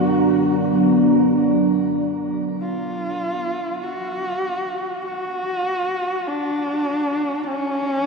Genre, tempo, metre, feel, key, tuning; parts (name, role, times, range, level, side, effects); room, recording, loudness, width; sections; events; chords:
dark ambient drone; free time; A4 = 441 Hz
warm horsehead fiddle; melody; 0.0-8.1 s; C#4 to F#4; -24 LUFS; equal; shimmer reverb, diffuse ambient delay
deep dark ambient pad; sustained chords; 0.0-1.4 s; F#3 to A#5; -18 LUFS; right 1 dB; chorus, built-in reverb, shimmer reverb
wet huge ambient reverb, RT60 7.2 s; dark, warm production; -19 LUFS; side -3 dB against mid
0.0-1.4 A section; 1.4-8.1 B section
fade-in on horsehead fiddle 1.4-8.1
0.0 Bm/F#; 1.4 N.C.